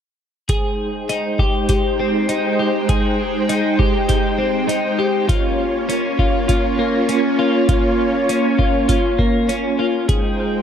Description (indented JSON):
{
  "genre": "dream pop",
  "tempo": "100 BPM",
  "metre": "4/4",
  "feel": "straight",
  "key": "Ab major",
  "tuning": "A4 = 440 Hz",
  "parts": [
    { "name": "string machine, violas", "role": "sustained chords", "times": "0.5-10.6 s", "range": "Ab3 to G5", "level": "-19 LUFS", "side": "right 1 dB", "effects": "ensemble chorus" },
    { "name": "twelve-string electric guitar", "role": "arpeggios", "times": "0.5-10.6 s", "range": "Bb3 to Ab4", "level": "-20 LUFS", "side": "left 1 dB", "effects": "wide subtle chorus, tape echo" },
    { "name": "booming analog drum machine", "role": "drums", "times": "0.5-10.2 s", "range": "hi-hat, kick drum", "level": "-20 LUFS", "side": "equal", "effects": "overdrive" }
  ],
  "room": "moderate lush hall reverb, RT60 1.9 s, digital ambience",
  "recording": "dark, warm production",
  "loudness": "-16 LUFS",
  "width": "side -8 dB against mid",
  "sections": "0.5-10.6 A section",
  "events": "none",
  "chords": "0.5 Abmaj7; 5.3 Bbm; 10.1 Abmaj7"
}